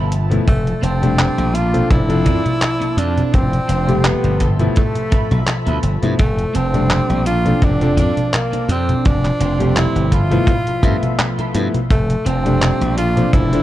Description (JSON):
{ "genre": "vaporwave", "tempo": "84 BPM", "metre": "4/4", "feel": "swing 55% on 16ths", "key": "F major", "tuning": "A4 = 439 Hz", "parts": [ { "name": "lush unison pad", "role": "sustained chords", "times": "0.0-13.6 s", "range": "F3 to C6", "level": "-30 LUFS", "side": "equal", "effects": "chorus, phaser" }, { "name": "clean electric guitar", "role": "riff", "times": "0.0-13.6 s", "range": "Bb3 to C5", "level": "-27 LUFS", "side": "right 3 dB", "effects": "analog chorus" }, { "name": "glassy slap bass", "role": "bass", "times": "0.0-13.6 s", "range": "F1 to G2", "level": "-18 LUFS", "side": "equal", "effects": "none" }, { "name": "detuned 8-bit digital drum machine", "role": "drums", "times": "0.1-13.6 s", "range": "congas, handclaps, hi-hat", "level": "-21 LUFS", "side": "equal", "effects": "small room ambience" }, { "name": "clear electric grand piano", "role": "accompaniment", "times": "0.3-13.6 s", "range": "C3 to E5", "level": "-22 LUFS", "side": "left 2 dB", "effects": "lush chorus" }, { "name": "breathy tenor saxophone", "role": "melody", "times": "0.5-13.6 s", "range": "A3 to F4", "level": "-22 LUFS", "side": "equal", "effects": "tape echo" }, { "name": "kick drum", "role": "drums", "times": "0.5-13.5 s", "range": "none", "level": "-17 LUFS", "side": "equal", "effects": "small room ambience" } ], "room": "studio ambience", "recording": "dark, warm production", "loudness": "-14 LUFS", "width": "side -14 dB against mid", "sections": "0.0-13.6 A section", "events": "none", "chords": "0.5 F6; 1.5 Bbmaj7; 3.0 F6; 4.4 G13; 6.2 F6; 7.3 Bbmaj7; 8.7 F6; 10.1 G13; 11.9 F6" }